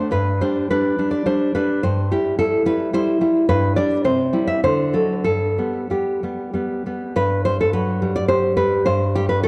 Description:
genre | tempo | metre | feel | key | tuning
romantic piece for solo classical guitar | 91-113 BPM | 3/4 | rubato | G major | A4 = 440 Hz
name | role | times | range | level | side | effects
nylon-string guitar | solo | 0.0-9.5 s | G2 to E5 | -20 LUFS | equal | tape echo
room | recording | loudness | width
moderate scoring stage reverb, RT60 1.5 s | dark, warm production | -20 LUFS | mono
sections
0.0-7.2 A section; 7.2-9.5 A section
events
none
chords
0.1 G5; 1.8 C/G; 3.5 G; 4.0 C; 4.6 D7; 5.3 G; 7.2 Gmaj7; 8.9 C5/G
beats
| 0.11 0.70 1.27 | 1.83 2.39 2.92 | 3.47 4.04 4.62 | 5.25 5.90 6.54 | 7.16 7.74 8.31 | 8.88 9.44

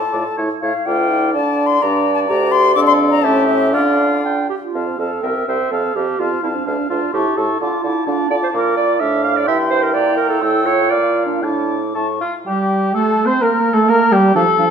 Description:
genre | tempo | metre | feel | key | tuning
quick classical-period movement for wind quintet | 113-130 BPM | 2/4 | rubato | D minor, F major from 4.7 s | A4 = 435 Hz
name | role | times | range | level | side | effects
silver concert flute | melody | 0.0-14.6 s | G4 to E6 | -22 LUFS | left 7 dB | none
warm clarinet | accompaniment | 0.0-14.7 s | G3 to G5 | -19 LUFS | right 6 dB | none
warm oboe | second line | 0.1-14.7 s | F4 to A5 | -22 LUFS | left 4 dB | none
warm French horn | accompaniment | 0.1-14.7 s | F3 to G4 | -21 LUFS | equal | none
warm bassoon | bass | 0.1-14.7 s | C2 to C5 | -21 LUFS | right 2 dB | none
room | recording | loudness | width
wet recital hall reverb, RT60 1.6 s | minimal, uncompressed stereo recording | -14 LUFS | side -7 dB against mid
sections
0.0-4.7 A section; 4.7-12.5 B section; 12.5-14.7 A section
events
none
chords
0.4 A; 0.9 Dm; 1.8 G5; 2.8 Dm/F; 3.2 A7; 3.7 Dm; 4.7 F; 5.2 C7; 5.7 F; 6.7 Dm; 7.1 A7; 7.6 Dm; 8.5 Bb; 9.5 Edim/G; 10.4 A7; 10.9 Bb; 11.4 Asus4; 12.0 A; 12.5 Gsus24; 13.4 Gm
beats
0.37 | 0.86 1.34 | 1.82 2.29 | 2.76 3.23 | 3.73 4.24 | 4.74 5.23 | 5.72 6.20 | 6.67 7.14 | 7.61 8.07 | 8.54 9.01 | 9.48 9.94 | 10.42 10.91 | 11.43 11.96 | 12.47 12.95 | 13.43 13.89 | 14.35

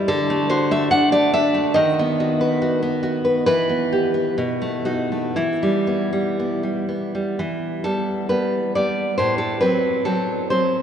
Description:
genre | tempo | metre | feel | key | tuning
romantic piece for solo classical guitar | 58-72 BPM | 2/4 | rubato | E minor | A4 = 440 Hz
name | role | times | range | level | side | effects
nylon-string guitar | solo | 0.0-10.8 s | A2 to F#5 | -18 LUFS | equal | none
room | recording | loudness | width
wet cathedral reverb, RT60 6.7 s | recorded in a church or concert hall, nothing above 10.3 kHz | -18 LUFS | side -8 dB against mid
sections
0.0-7.4 A section; 7.4-10.8 A section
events
none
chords
0.1 D; 1.8 B/D#; 3.5 Em; 4.4 B7; 5.4 Em; 9.2 F#dim/A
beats
| 0.07 0.91 | 1.77 2.63 | 3.49 4.38 | 5.36 6.37 | 7.38 8.30 | 9.19 10.07

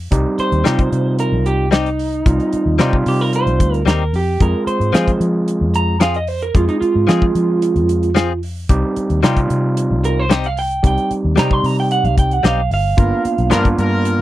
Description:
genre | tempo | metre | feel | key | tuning
straight-eighth soul blues | 112 BPM | 4/4 | straight | C minor | A4 = 439 Hz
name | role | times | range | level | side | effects
vintage muted fingered electric bass | bass | 0.0-14.2 s | G1 to F3 | -18 LUFS | left 1 dB | none
overdriven tine electric piano | accompaniment | 0.1-14.2 s | G3 to Ab4 | -20 LUFS | right 2 dB | none
damped 70s drum kit | drums | 0.1-14.2 s | hi-hat, kick drum, snare drum | -16 LUFS | equal | none
electric guitar through a small old amp | second line | 0.4-13.8 s | Eb4 to C6 | -20 LUFS | right 4 dB | none
direct-recorded clean electric guitar | stabs | 0.6-13.7 s | F3 to A#4 | -19 LUFS | left 8 dB | none
clear horn section | sustained chords | 13.0-14.2 s | B3 to A#4 | -22 LUFS | left 3 dB | none
room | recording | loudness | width
little or no reverb | dry, close 1970s-style studio recording | -14 LUFS | side -15 dB against mid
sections
0.0-14.2 A section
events
clean electric guitar solo 0.0-14.2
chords
0.1 Cm; 4.4 Fm; 8.7 Cm; 13.0 G7#9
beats
| 0.11 0.65 1.19 1.72 | 2.26 2.79 3.33 3.87 | 4.40 4.94 5.47 6.01 | 6.55 7.08 7.62 8.15 | 8.69 9.22 9.76 10.30 | 10.83 11.37 11.90 12.44 | 12.98 13.51 14.05

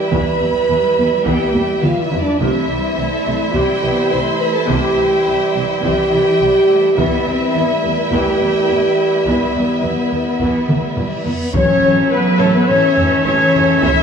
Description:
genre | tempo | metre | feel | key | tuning
cinematic, epic orchestral film score | 105 BPM | 4/4 | straight | unclear | A4 = 436 Hz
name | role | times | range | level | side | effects
warm symphonic violin section | melody | 0.0-14.0 s | A4 to C6 | -27 LUFS | left 3 dB | none
warm symphonic violin section | second line | 0.0-14.0 s | A4 to E5 | -23 LUFS | left 3 dB | none
dark symphonic viola section | accompaniment | 0.0-14.0 s | C3 to E5 | -24 LUFS | right 1 dB | none
dark trombone section | sustained chords | 0.0-14.0 s | C#3 to A3 | -25 LUFS | right 5 dB | none
mellow French horn section | sustained chords | 0.0-14.0 s | A3 to C5 | -17 LUFS | equal | none
warm symphonic cello section | bass | 0.0-14.0 s | E3 to C4 | -23 LUFS | right 2 dB | none
warm symphonic double bass section | bass | 0.1-13.9 s | A1 to E2 | -25 LUFS | right 3 dB | none
taiko ensemble | drums | 0.1-14.0 s | none | -22 LUFS | equal | none
timpani | percussion | 2.4-3.2, 11.5-12.4 s | A2 to C3 | -26 LUFS | equal | none
reverse cymbal and impact | sound effects | 11.1-13.8 s | none | -31 LUFS | equal | none
silver concert flute | second line | 11.5-14.0 s | A4 to E5 | -21 LUFS | left 4 dB | none
rich symphonic string section | sustained chords | 11.5-14.0 s | C#4 to E5 | -25 LUFS | left 2 dB | none
bright trumpet | stabs | 11.5-14.0 s | A4 to E5 | -18 LUFS | right 1 dB | none
mellow tuba | bass | 11.5-13.9 s | A1 | -25 LUFS | right 3 dB | none
room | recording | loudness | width
wet scoring stage reverb, RT60 1.9 s | small room ambience | -13 LUFS | side -6 dB against mid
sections
0.0-11.5 A section; 11.5-14.0 B section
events
drum fill 1.5-2.4, 10.7-11.5; reverse cymbal 11.1-11.5; impact 11.5-13.8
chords
0.0 Em; 2.4 C; 7.0 Em; 11.5 A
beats
| 0.12 0.69 1.26 1.83 | 2.40 2.97 3.54 4.12 | 4.69 5.26 5.83 6.40 | 6.97 7.54 8.12 8.69 | 9.26 9.83 10.40 10.97 | 11.54 12.12 12.69 13.26 | 13.83

